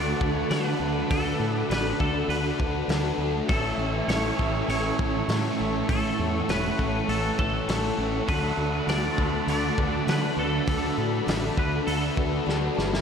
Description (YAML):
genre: rock, shoegaze and dream pop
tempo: 100 BPM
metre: 4/4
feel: straight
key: unclear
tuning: A4 = 440 Hz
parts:
  - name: twangy electric guitar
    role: melody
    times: 0.0-12.7 s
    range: A4 to D5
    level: -32 LUFS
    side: left 1 dB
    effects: ensemble chorus, ping-pong delay
  - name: sweeping resonant pad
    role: sustained chords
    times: 0.0-13.0 s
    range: A4 to C#6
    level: -33 LUFS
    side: equal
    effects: chorus
  - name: picked twelve-string acoustic guitar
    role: arpeggios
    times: 0.0-13.0 s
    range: F#3 to A4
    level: -37 LUFS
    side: left 6 dB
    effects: none
  - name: biting overdriven guitar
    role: riff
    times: 0.0-13.0 s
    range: A2 to A4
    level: -32 LUFS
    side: right 9 dB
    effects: reverse reverb
  - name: overdriven semi-hollow guitar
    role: riff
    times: 0.0-13.0 s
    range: A2 to A4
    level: -32 LUFS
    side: left 6 dB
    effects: ensemble chorus
  - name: sludgy distorted guitar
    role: riff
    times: 0.0-13.0 s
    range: A2 to D4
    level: -33 LUFS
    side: left 1 dB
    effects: overdrive
  - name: growling fingered electric bass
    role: bass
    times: 0.0-13.0 s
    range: E1 to D3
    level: -30 LUFS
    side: equal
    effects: overdrive
  - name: loose indie drum kit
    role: drums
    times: 0.2-13.0 s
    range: hi-hat, kick drum, snare drum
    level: -31 LUFS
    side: equal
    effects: none
room: wet lush hall reverb, RT60 1.7 s, small room ambience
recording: dreamy mix soaked in reverb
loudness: -23 LUFS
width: side -7 dB against mid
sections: 0.0-13.0 A section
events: drum fill 12.5-13.0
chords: 0.0 D6; 3.5 A; 8.3 D6